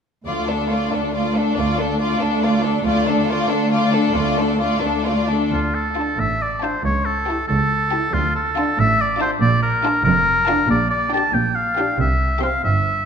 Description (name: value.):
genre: classical, dramatic, fast romantic movement for symphony orchestra.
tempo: 92 BPM (dotted quarters).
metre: 6/8.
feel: rubato.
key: D minor.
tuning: A4 = 438 Hz.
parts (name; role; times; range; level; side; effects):
warm symphonic violin section; melody; 0.3-12.6 s; A4 to C6; -28 LUFS; left 4 dB; none.
warm symphonic violin section; second line; 0.3-12.6 s; D4 to G4; -25 LUFS; left 2 dB; none.
warm symphonic viola section; accompaniment; 0.3-12.6 s; A3 to E4; -26 LUFS; right 1 dB; none.
clear symphonic double bass section; bass; 0.3-13.1 s; F1 to D2; -24 LUFS; right 3 dB; none.
warm symphonic cello section; bass; 0.3-13.1 s; C#2 to C3; -23 LUFS; right 1 dB; none.
clear oboe; second line; 5.5-13.1 s; F4 to A5; -19 LUFS; equal; none.
room: moderate concert hall reverb, RT60 2.1 s.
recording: minimal, uncompressed stereo recording.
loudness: -17 LUFS.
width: side -7 dB against mid.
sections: 0.3-5.5 A section; 5.5-13.1 B section.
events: none.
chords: 0.3 Dm; 6.8 A7/C#; 8.1 Dm; 9.4 Bbmaj7; 10.7 Gm/Bb; 12.0 C.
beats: | 0.26 0.92 | 1.57 2.21 | 2.85 3.50 | 4.15 4.83 | 5.52 6.19 | 6.85 7.49 | 8.14 8.78 | 9.41 10.06 | 10.70 11.34 | 11.99 12.65.